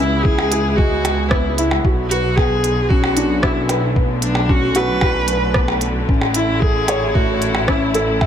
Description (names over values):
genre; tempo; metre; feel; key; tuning
piano and strings electronica; 113 BPM; 4/4; straight; B dorian; A4 = 440 Hz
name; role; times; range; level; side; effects
warm viola; melody; 0.0-8.1 s; D4 to B4; -21 LUFS; right 1 dB; none
muted studio string section; sustained chords; 0.0-8.3 s; D3 to E4; -26 LUFS; left 2 dB; sidechain pumping
felt-muted upright piano; riff; 0.0-8.3 s; G#3 to E5; -21 LUFS; left 1 dB; ping-pong delay
bright studio double bass section; bass; 0.0-8.3 s; A1 to C#2; -22 LUFS; equal; sidechain pumping
electronic kick drum; drums; 0.2-8.3 s; none; -17 LUFS; equal; none
minimal click drum kit; drums; 0.4-8.3 s; hi-hat, percussion blips, rim click; -23 LUFS; equal; none
room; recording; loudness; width
small room ambience; none; -14 LUFS; side -9 dB against mid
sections
0.0-8.3 A section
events
none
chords
0.0 C#m7; 1.8 Bmadd9; 6.1 A